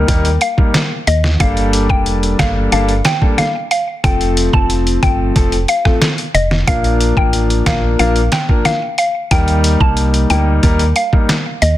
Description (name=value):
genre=dancehall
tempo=91 BPM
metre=4/4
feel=straight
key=Bb major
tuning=A4 = 438 Hz
part: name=warm concert grand piano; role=accompaniment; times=0.0-11.3 s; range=F3 to Bb4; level=-18 LUFS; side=left 2 dB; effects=sidechain pumping
part: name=organ-like FM bass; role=bass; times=0.0-11.8 s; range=F1 to Eb2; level=-16 LUFS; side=equal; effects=none
part: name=trip hop sampler-style drum kit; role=drums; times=0.1-11.8 s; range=handclaps, hi-hat, kick drum, rim click, snare drum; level=-16 LUFS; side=equal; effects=none
part: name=mallet-like synth pluck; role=melody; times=0.4-11.8 s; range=Eb5 to A5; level=-18 LUFS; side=left 1 dB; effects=chorus, tape echo
room=digital ambience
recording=dense, heavily limited modern master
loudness=-12 LUFS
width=side -14 dB against mid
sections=0.0-11.8 A section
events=none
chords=0.0 Eb; 1.4 Gmadd9; 4.0 F; 6.7 Bb; 9.3 Eb